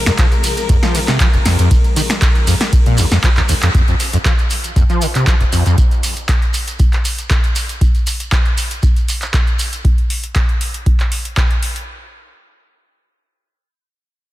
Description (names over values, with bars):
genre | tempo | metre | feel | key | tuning
acid house | 118 BPM | 4/4 | straight | F minor | A4 = 439 Hz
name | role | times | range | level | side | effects
dark chamber string section | sustained chords | 0.0-3.7 s | C3 to Bb4 | -25 LUFS | left 3 dB | sidechain pumping
overdriven acid bass | riff | 0.1-5.8 s | F1 to F3 | -17 LUFS | equal | distortion, tube saturation, ensemble chorus, sidechain pumping
electro analog drum machine | drums | 0.1-11.9 s | finger snaps, handclaps, hi-hat, ride cymbal, snare drum | -20 LUFS | equal | soft clipping on snare
shekere | percussion | 0.1-9.8 s | none | -27 LUFS | right 3 dB | none
electronic kick drum | drums | 0.2-11.5 s | none | -14 LUFS | equal | none
room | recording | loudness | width
little or no reverb | dense, heavily limited modern master | -12 LUFS | side -16 dB against mid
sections
0.0-3.7 A section; 3.7-11.9 B section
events
drop 0.0-3.7; drum fill 3.4-3.7; band accent 3.6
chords
0.0 Fm; 3.7 F5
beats
0.18 0.69 1.20 | 1.71 2.22 2.73 3.24 | 3.74 4.25 4.76 5.27 | 5.78 6.29 6.79 7.30 | 7.81 8.32 8.83 9.34 | 9.85 10.35 10.86 11.37